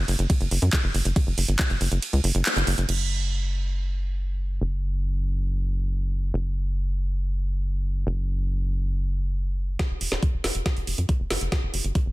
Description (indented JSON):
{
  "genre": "psychedelic trance",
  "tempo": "139 BPM",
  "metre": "4/4",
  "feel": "straight",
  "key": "unclear",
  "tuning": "A4 = 441 Hz",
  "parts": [
    { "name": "tight sequencer bass", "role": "bass", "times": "0.0-12.1 s", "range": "F#1 to F#2", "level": "-24 LUFS", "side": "equal", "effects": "none" },
    { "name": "garage drum kit", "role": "drums", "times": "0.1-3.0, 9.8-12.0 s", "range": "crash cymbal, handclaps, hi-hat, ride cymbal, snare drum", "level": "-28 LUFS", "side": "right 1 dB", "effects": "overdrive, small room ambience" },
    { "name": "electronic kick drum", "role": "drums", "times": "0.3-1.7, 9.8-12.0 s", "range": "none", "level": "-23 LUFS", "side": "equal", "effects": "overdrive, small room ambience" }
  ],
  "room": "little or no reverb",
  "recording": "dense, heavily limited modern master",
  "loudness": "-23 LUFS",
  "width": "side -19 dB against mid",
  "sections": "0.0-2.9 A section; 2.9-9.8 B section; 9.8-12.1 C section",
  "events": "drop 0.0-2.9; kick drops out 2.0-2.9; band accent 2.5; build-up 9.8-12.1; drum fill 9.8-12.1",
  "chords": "none"
}